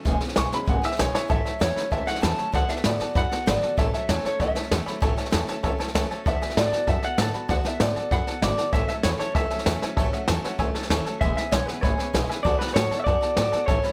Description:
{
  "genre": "rockabilly",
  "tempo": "194 BPM",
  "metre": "4/4",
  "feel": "straight",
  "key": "A major",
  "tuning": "A4 = 440 Hz",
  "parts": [
    { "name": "picked steel-string acoustic guitar", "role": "accompaniment", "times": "0.0-13.9 s", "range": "A2 to A4", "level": "-35 LUFS", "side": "equal", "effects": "none" },
    { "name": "upright bass", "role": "bass", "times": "0.1-13.9 s", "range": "E1 to A2", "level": "-31 LUFS", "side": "equal", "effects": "none" },
    { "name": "jazz brush drum kit", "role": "drums", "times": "0.1-13.9 s", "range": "hi-hat, kick drum, snare drum", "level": "-28 LUFS", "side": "equal", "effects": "none" },
    { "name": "clear upright piano", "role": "accompaniment", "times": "0.4-13.9 s", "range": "C#3 to C#6", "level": "-34 LUFS", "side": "equal", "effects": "none" },
    { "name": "electric guitar through a small old amp", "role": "melody", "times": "1.3-13.9 s", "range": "B4 to A5", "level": "-29 LUFS", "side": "equal", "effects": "digital delay" }
  ],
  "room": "light reverb",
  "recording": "none",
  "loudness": "-24 LUFS",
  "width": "mono",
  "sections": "0.0-1.3 A section; 1.3-13.9 B section",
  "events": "upright piano solo 0.0-1.3; drum fill 1.1",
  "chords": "0.1 E6; 1.3 A6; 2.5 D6; 3.8 A6; 6.3 D6; 8.7 A6; 11.2 E6; 12.4 D6"
}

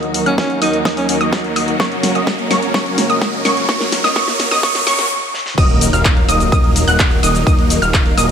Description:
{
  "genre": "EDM, festival progressive house",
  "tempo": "127 BPM",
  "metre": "4/4",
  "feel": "straight",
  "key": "Eb minor",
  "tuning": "A4 = 439 Hz",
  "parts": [
    { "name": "warm studio string section", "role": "sustained chords", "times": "0.0-5.1 s", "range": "Eb2 to Gb4", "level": "-26 LUFS", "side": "equal", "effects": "sidechain pumping" },
    { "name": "wide unison pluck", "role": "arpeggios", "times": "0.0-8.3 s", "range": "Db6 to Gb6", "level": "-19 LUFS", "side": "equal", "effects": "cassette tape, sidechain pumping, dub echo" },
    { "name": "supersaw chords", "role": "riff", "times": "0.0-8.3 s", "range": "Gb3 to Gb5", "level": "-19 LUFS", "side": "equal", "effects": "sidechain pumping, low-pass filter, dub echo" },
    { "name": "big-room dance drum kit", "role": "drums", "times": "0.0-8.3 s", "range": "cabasa, crash cymbal, handclaps, hi-hat, snare drum", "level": "-20 LUFS", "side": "left 1 dB", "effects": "small room ambience" },
    { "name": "riser and impact", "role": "sound effects", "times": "0.5-7.5 s", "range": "none", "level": "-24 LUFS", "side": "right 1 dB", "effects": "none" },
    { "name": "bright alto saxophone", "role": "melody", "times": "0.3-1.2 s", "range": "Db4 to Eb4", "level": "-22 LUFS", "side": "right 1 dB", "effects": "dub echo" },
    { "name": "electronic kick drum", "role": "drums", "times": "0.4-8.0 s", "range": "none", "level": "-15 LUFS", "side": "equal", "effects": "high-pass filter on kick, small room ambience" },
    { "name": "fat analog bass", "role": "bass", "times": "5.6-8.3 s", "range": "Eb1", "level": "-18 LUFS", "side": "equal", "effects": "tube saturation, sidechain pumping" }
  ],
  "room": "moderate concert hall reverb, RT60 2.2 s",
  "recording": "high-pass filter",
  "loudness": "-12 LUFS",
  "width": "side -7 dB against mid",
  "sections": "0.0-5.6 A section; 5.6-8.3 B section",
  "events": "build-up 0.0-5.6; drum fill 0.0-5.1, 5.3; filter sweep on supersaw synth 0.0-5.6; filter sweep 0.0-5.6; riser 0.5-5.1; break 5.1-5.6; drop 5.6-8.3; impact 5.6-7.5",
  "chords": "0.0 Ebm; 1.8 Gb; 5.6 Ebm"
}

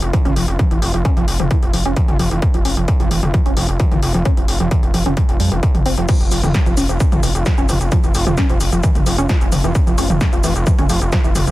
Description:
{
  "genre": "driving peak-time techno",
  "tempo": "131 BPM",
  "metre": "4/4",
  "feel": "straight",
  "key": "unclear",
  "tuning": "A4 = 441 Hz",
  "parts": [
    { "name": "gritty driven synth bass", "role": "bass", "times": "0.0-11.5 s", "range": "F1 to F2", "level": "-18 LUFS", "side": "equal", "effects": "sidechain pumping" },
    { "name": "punchy analog drum machine", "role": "drums", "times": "0.0-11.5 s", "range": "crash cymbal, hi-hat, shaker, snare drum, toms", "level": "-22 LUFS", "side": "left 1 dB", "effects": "none" },
    { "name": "tight sequenced synth", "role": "riff", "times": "0.1-11.5 s", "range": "E3 to Db4", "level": "-22 LUFS", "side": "right 1 dB", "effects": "chorus, sidechain pumping, digital delay" },
    { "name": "electronic kick drum", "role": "drums", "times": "0.1-11.2 s", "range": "none", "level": "-16 LUFS", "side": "equal", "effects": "distortion, overdrive" }
  ],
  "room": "little or no reverb",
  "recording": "dense, heavily limited modern master",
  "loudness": "-14 LUFS",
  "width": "side -17 dB against mid",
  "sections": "0.0-6.1 A section; 6.1-11.5 B section",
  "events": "drop 6.1-11.5",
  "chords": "0.0 F5"
}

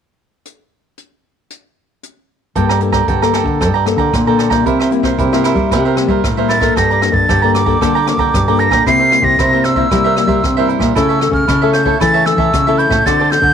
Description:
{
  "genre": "samba and choro",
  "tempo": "114 BPM",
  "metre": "4/4",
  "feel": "straight",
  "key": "G dorian",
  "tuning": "A4 = 441 Hz",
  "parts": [
    { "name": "jazz brush drum kit", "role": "drums", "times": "0.5-13.5 s", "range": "hi-hat, kick drum, rim click", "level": "-20 LUFS", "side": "equal", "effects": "none" },
    { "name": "cavaquinho", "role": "accompaniment", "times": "2.6-13.3 s", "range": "E4 to Bb5", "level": "-18 LUFS", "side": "right 11 dB", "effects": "none" },
    { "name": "nylon-string guitar", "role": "accompaniment", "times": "2.6-13.5 s", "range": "G2 to A4", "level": "-18 LUFS", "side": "left 10 dB", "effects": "none" },
    { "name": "nylon-string guitar", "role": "bass", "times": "2.6-13.5 s", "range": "G2 to G3", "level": "-16 LUFS", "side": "equal", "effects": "none" },
    { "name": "breathy jazz flute", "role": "melody", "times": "6.5-13.5 s", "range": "D6 to C7", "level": "-15 LUFS", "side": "equal", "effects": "none" }
  ],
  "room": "light reverb, small room ambience",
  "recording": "1960s-style stereo with parts hard left and right",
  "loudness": "-11 LUFS",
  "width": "side -8 dB against mid",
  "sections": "0.5-2.6 A section; 2.6-6.8 B section; 6.8-13.5 C section",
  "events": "none",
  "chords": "0.5 N.C.; 2.6 Gmadd9; 4.7 C7; 6.8 Gmadd9; 8.9 C7; 11.0 A/C#"
}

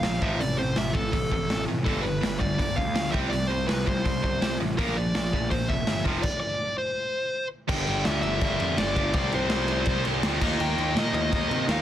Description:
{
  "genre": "punk rock",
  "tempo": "165 BPM",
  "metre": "4/4",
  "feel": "straight",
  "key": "unclear",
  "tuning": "A4 = 437 Hz",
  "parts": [
    { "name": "dark smooth lead guitar", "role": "melody", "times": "0.0-11.8 s", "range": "A4 to G5", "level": "-29 LUFS", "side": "equal", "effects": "overdrive" },
    { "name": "distorted electric guitar", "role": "riff", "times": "0.0-11.8 s", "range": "F2 to Eb4", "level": "-28 LUFS", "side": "equal", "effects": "overdrive" },
    { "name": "fuzz picked electric bass", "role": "bass", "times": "0.0-11.8 s", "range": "F1 to C3", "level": "-30 LUFS", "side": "equal", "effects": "overdrive" },
    { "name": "raw garage drum kit", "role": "drums", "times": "0.0-11.8 s", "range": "crash cymbal, hi-hat, kick drum, snare drum", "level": "-28 LUFS", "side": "equal", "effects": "none" }
  ],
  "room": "little or no reverb",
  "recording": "dense, heavily limited modern master",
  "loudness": "-23 LUFS",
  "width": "side -11 dB against mid",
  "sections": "0.0-7.7 A section; 7.7-11.8 B section",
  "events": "stop 6.2-7.7",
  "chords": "0.2 F/A; 1.9 G; 3.1 C5; 4.8 Bb; 6.1 F5; 7.7 G5; 9.1 C5; 10.4 Eb"
}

